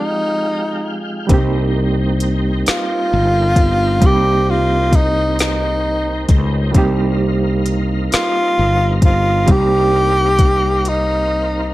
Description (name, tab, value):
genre	slow six-eight R&B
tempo	44 BPM (dotted quarters)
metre	6/8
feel	straight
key	unclear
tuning	A4 = 440 Hz
part	breathy tenor saxophone	melody	0.0-11.7 s	Eb4 to G4	-17 LUFS	equal	plate reverb
part	barky reed electric piano	accompaniment	0.0-11.7 s	F3 to G4	-22 LUFS	right 4 dB	overdrive, fast tremolo
part	tonewheel organ	sustained chords	0.0-11.7 s	Ab3 to G5	-27 LUFS	left 1 dB	chorus vibrato, fast rotary speaker
part	fretless electric bass	bass	1.3-11.7 s	G1 to Db2	-18 LUFS	left 1 dB	wide subtle chorus
part	smooth R&B drum kit	drums	1.3-11.1 s	hi-hat, kick drum, snare drum	-14 LUFS	left 1 dB	none
room	light reverb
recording	none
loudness	-13 LUFS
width	side -17 dB against mid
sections	0.0-11.7 A section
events	drum fill 10.8-11.7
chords	0.0 Fm9; 1.3 Cm7